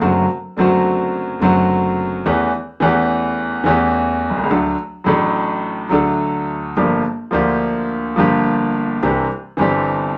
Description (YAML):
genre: tango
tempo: 107 BPM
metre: 4/4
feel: rubato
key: unclear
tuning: A4 = 440 Hz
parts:
  - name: clear concert grand piano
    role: accompaniment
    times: 0.0-10.2 s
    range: G1 to A4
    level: -18 LUFS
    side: equal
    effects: none
  - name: upright bass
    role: bass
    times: 0.0-10.2 s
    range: F#1 to E2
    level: -33 LUFS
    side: equal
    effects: none
room: wet club reverb, RT60 0.5 s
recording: none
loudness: -18 LUFS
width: mono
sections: 0.0-10.2 A section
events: none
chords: 0.0 D7/F#; 2.3 A7/E; 4.5 D; 6.8 Gm7; 9.0 Cadd9